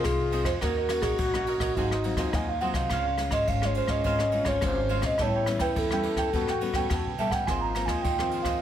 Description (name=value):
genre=samba and choro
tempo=105 BPM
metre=4/4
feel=straight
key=unclear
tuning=A4 = 441 Hz
part: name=pure breathy sine lead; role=melody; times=0.0-8.6 s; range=Gb4 to Bb5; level=-29 LUFS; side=right 2 dB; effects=chorus, plate reverb
part: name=breathy trombone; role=second line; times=0.0-8.6 s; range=Db4 to Gb4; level=-33 LUFS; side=left 5 dB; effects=none
part: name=cavaquinho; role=accompaniment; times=0.0-8.6 s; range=F4 to G5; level=-35 LUFS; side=right 7 dB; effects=none
part: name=nylon-string guitar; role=accompaniment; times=0.0-8.6 s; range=Ab2 to Ab4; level=-34 LUFS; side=left 4 dB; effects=none
part: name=upright bass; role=bass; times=0.0-8.6 s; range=Ab1 to C#3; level=-32 LUFS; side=left 1 dB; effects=none
part: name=jazz brush drum kit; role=drums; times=0.0-8.6 s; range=kick drum, ride cymbal, rim click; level=-31 LUFS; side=equal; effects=none
room=light reverb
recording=none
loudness=-24 LUFS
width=side -10 dB against mid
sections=0.0-8.6 A section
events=none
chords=0.0 Fm7; 0.6 Ebm7; 1.8 Ab6; 2.9 Dbmaj7; 5.2 A9; 7.5 Ab69